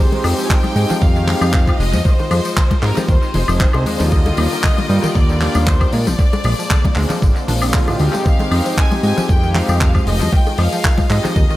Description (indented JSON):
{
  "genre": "nu-disco, nu disco",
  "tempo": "116 BPM",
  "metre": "4/4",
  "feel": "swing 54% on 16ths",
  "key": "F dorian",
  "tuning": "A4 = 440 Hz",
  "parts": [
    { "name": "clear chamber violin section", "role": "melody", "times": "0.0-11.6 s", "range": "Bb4 to Ab5", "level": "-25 LUFS", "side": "equal", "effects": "tape echo" },
    { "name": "warm analog pad", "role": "accompaniment", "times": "0.0-11.3 s", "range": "D3 to Ab4", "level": "-23 LUFS", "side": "left 1 dB", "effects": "chorus, vintage 12-bit sampler grit, sidechain pumping, tape echo" },
    { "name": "string machine, full ensemble", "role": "sustained chords", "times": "0.0-11.6 s", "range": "G3 to D6", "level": "-28 LUFS", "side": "equal", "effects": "phaser, ensemble chorus, sidechain pumping" },
    { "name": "analog pluck", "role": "arpeggios", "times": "0.0-11.6 s", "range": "D3 to D4", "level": "-26 LUFS", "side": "left 1 dB", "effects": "chorus, sidechain pumping, tape echo" },
    { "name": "fat analog bass", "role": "bass", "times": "0.0-11.5 s", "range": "F1 to Bb2", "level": "-17 LUFS", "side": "equal", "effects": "none" },
    { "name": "damped 70s drum kit", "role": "drums", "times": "0.1-11.6 s", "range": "handclaps, hi-hat, tambourine, woodblock", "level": "-23 LUFS", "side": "left 1 dB", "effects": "small room reverb, tape echo" },
    { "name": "bongos and congas", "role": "percussion", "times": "0.1-11.3 s", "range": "none", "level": "-26 LUFS", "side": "left 2 dB", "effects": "none" },
    { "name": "electronic kick drum", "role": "drums", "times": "0.5-11.5 s", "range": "none", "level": "-15 LUFS", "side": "equal", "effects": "overdrive, small room reverb" },
    { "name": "swell", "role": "sound effects", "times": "7.4-8.3 s", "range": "none", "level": "-28 LUFS", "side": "right 1 dB", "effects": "none" }
  ],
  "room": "studio reverb",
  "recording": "echo-heavy mix",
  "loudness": "-13 LUFS",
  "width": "side -16 dB against mid",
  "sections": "0.0-11.6 A section",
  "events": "swell 7.4-8.3",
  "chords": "0.0 Fm7; 4.1 Ebmaj7; 5.9 Bb9; 8.3 Fm7"
}